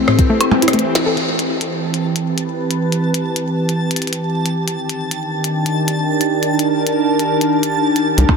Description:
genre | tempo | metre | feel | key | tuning
IDM | 137 BPM | 4/4 | straight | unclear | A4 = 440 Hz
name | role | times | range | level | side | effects
felt-muted upright piano | melody | 0.0-0.7 s | none | barely audible | none | none
phased analog pad | sustained chords | 0.0-8.4 s | Eb3 to B4 | -17 LUFS | equal | phaser, chorus, vintage 12-bit sampler grit, sidechain pumping
warbly dusty pluck | arpeggios | 0.0-1.1 s | A2 to A4 | -21 LUFS | equal | chorus, ping-pong delay
glitchy drum kit | drums | 0.1-8.4 s | hi-hat, percussion blips, rim click, snare drum | -20 LUFS | equal | soft clipping on snare, ping-pong delay
electronic kick drum | drums | 0.2-0.3, 8.3-8.4 s | none | -15 LUFS | equal | none
backwards swelling texture | texture | 1.9-8.4 s | A5 | -24 LUFS | right 2 dB | built-in reverb
rubbery square bass | bass | 8.2 s | C2 | -12 LUFS | equal | none
room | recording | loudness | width
moderate huge ambient reverb, RT60 4.8 s | dense, heavily limited modern master | -15 LUFS | side -5 dB against mid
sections
0.0-1.2 A section; 1.2-8.2 B section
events
kick drops out 0.3-1.2; band accent 1.0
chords
0.0 Am7; 1.2 Cmaj7; 4.7 Ebmaj7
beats
0.30 0.73 | 1.17 1.61 2.05 2.49 | 2.92 3.36 3.80 4.24 | 4.68 5.11 5.55 5.99 | 6.43 6.87 7.30 7.74 | 8.18

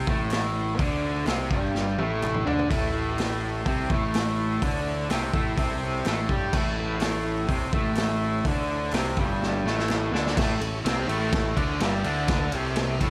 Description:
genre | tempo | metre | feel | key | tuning
garage rock duo or trio | 125 BPM | 4/4 | straight | unclear | A4 = 438 Hz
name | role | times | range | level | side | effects
raw garage guitar | riff | 0.0-13.1 s | G2 to G4 | -29 LUFS | equal | overdrive
fuzz picked electric bass | bass | 0.0-13.1 s | G1 to G2 | -33 LUFS | equal | overdrive, tube saturation
raw garage drum kit | drums | 0.1-13.1 s | crash cymbal, hi-hat, kick drum, ride cymbal, snare drum, toms | -30 LUFS | equal | none
group handclap | percussion | 0.3-10.0 s | none | -45 LUFS | equal | none
combo organ | sustained chords | 2.7-13.1 s | E4 to E5 | -39 LUFS | equal | none
room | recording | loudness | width
light reverb | none | -26 LUFS | mono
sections
0.0-10.4 A section; 10.4-13.1 B section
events
drum fill 1.8-2.7, 9.4-10.4; transistor combo organ fill 12.8-13.1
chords
0.0 A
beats
0.32 | 0.80 1.28 1.75 2.23 | 2.71 3.19 3.66 4.14 | 4.62 5.10 5.58 6.05 | 6.53 7.01 7.49 7.97 | 8.45 8.93 9.41 9.89 | 10.37 10.85 11.33 11.81 | 12.29 12.77

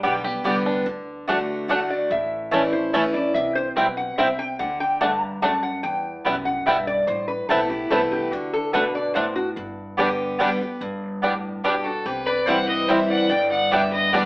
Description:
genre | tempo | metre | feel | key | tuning
bluegrass | 145 BPM | 3/4 | straight | G major | A4 = 441 Hz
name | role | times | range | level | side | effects
bluegrass banjo | melody | 0.0-14.2 s | G3 to G4 | -25 LUFS | equal | none
picked steel-string acoustic guitar | accompaniment | 0.0-14.3 s | E2 to G4 | -26 LUFS | equal | none
mandolin | stabs | 0.0-14.2 s | A3 to A5 | -24 LUFS | right 1 dB | none
upright bass | bass | 0.0-14.2 s | G1 to E2 | -41 LUFS | equal | none
lap resonator guitar | second line | 1.7-9.5, 11.6-14.3 s | D4 to Bb5 | -24 LUFS | left 1 dB | none
bright fiddle | melody | 11.6-14.3 s | G4 to G5 | -23 LUFS | left 1 dB | none
room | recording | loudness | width
moderate large studio reverb, RT60 0.8 s | band playing live in one room, AM radio sound | -20 LUFS | side -23 dB against mid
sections
0.9-10.8 A section; 10.8-14.3 B section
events
resonator guitar played with a steel bar solo 0.9-10.8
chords
0.0 G; 0.9 D; 2.1 A; 3.4 C; 4.6 D; 5.8 Em; 7.1 Amadd9; 8.3 D; 9.6 G; 12.1 C; 13.3 G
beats
0.04 0.45 | 0.87 1.28 1.70 | 2.11 2.52 2.94 | 3.35 3.77 4.18 | 4.60 5.01 5.42 | 5.84 6.25 6.67 | 7.08 7.50 7.91 | 8.33 8.74 9.15 | 9.57 9.98 10.40 | 10.81 11.23 11.64 | 12.06 12.47 12.89 | 13.30 13.72 14.13

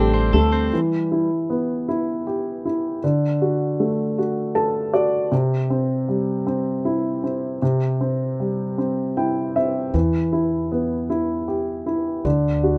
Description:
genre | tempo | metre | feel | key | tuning
six-eight pop ballad | 52 BPM (dotted quarters) | 6/8 | straight | E minor | A4 = 440 Hz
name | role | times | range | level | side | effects
warm upright piano | accompaniment | 0.0-12.8 s | C3 to A5 | -22 LUFS | equal | none
twelve-string electric guitar | arpeggios | 0.0-1.3 s | G3 to A4 | -27 LUFS | equal | none
upright bass | bass | 0.0-0.7, 9.9-12.8 s | A1 to E2 | -27 LUFS | equal | none
room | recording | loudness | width
light reverb | rough home demo mix, nothing above 10.8 kHz | -22 LUFS | mono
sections
0.7-12.8 A section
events
upright piano fill 4.2-5.3, 8.8-9.9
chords
0.0 D7sus4; 0.7 Em; 3.0 D; 5.3 C; 9.9 Em; 12.2 D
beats
| 0.72 1.88 | 3.03 4.17 | 5.32 6.47 | 7.62 8.78 | 9.94 11.10 | 12.25

